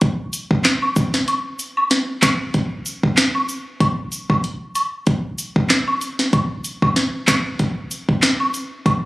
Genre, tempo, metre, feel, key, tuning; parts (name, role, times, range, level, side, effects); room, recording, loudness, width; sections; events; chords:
dancehall; 95 BPM; 4/4; swing 56% on 16ths
afro-pop drum kit; drums; 0.0-9.0 s; handclaps, hi-hat, kick drum, snare drum; -18 LUFS; equal
cabasa and woodblock; percussion; 0.3-9.0 s; -23 LUFS; equal
light reverb; recorded on a phone in the room, club reverb, compression; -17 LUFS; side -20 dB against mid
0.0-9.1 A section
break 1.3-1.9